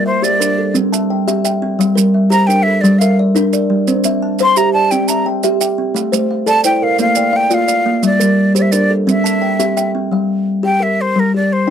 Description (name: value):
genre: southern african traditional, mbira-style interlocking cycle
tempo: 115 BPM (dotted quarters)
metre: 12/8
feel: straight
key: G dorian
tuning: A4 = 440 Hz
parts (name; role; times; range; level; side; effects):
- breathy jazz flute; melody; 0.0-11.7 s; Bb4 to C6; -15 LUFS; equal; none
- kalimba; arpeggios; 0.0-11.7 s; G3 to A5; -16 LUFS; left 4 dB; none
- kalimba; arpeggios; 0.0-10.5 s; G3 to A5; -17 LUFS; right 5 dB; none
- maracas; percussion; 0.2-9.9 s; none; -21 LUFS; right 16 dB; none
room: light reverb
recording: dry, close 1970s-style studio recording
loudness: -12 LUFS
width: side -8 dB against mid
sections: 0.0-10.1 A section; 10.1-11.7 B section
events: none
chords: 0.0 Gm; 0.8 C; 1.8 Gm; 6.0 Am; 7.0 Bb; 8.0 Gm; 9.1 C; 10.1 Gm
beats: 0.23 0.75 1.27 | 1.79 2.31 2.84 3.36 | 3.88 4.40 4.92 5.44 | 5.96 6.48 7.00 7.52 | 8.04 8.56 9.08 9.60 | 10.12 10.64 11.16 11.69